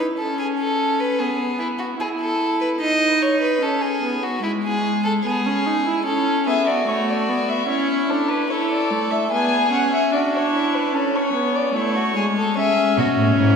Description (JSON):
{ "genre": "classical, baroque-style fugue for string quartet", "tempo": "74 BPM", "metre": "4/4", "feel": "straight", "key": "A major", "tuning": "A4 = 440 Hz", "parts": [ { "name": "rich violin", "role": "second line", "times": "0.0-13.6 s", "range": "C#4 to D#5", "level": "-23 LUFS", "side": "right 1 dB", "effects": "none" }, { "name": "warm viola", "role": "accompaniment", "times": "0.0-13.6 s", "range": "G#3 to E4", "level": "-21 LUFS", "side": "equal", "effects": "none" }, { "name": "dark violin", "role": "melody", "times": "6.5-13.6 s", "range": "A4 to G#5", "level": "-22 LUFS", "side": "left 3 dB", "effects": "none" }, { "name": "rich cello", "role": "bass", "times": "13.0-13.6 s", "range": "G#2 to B2", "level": "-18 LUFS", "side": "right 3 dB", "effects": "none" } ], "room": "wet church reverb, RT60 2.4 s", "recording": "recorded in a church or concert hall", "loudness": "-18 LUFS", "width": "side -6 dB against mid", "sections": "0.0-13.6 A section", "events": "none", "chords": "0.0 N.C.; 1.2 E/B; 2.8 B/D#; 4.4 E/G# (rootless); 6.1 A; 7.7 A/C#; 9.3 E7/B; 10.9 A" }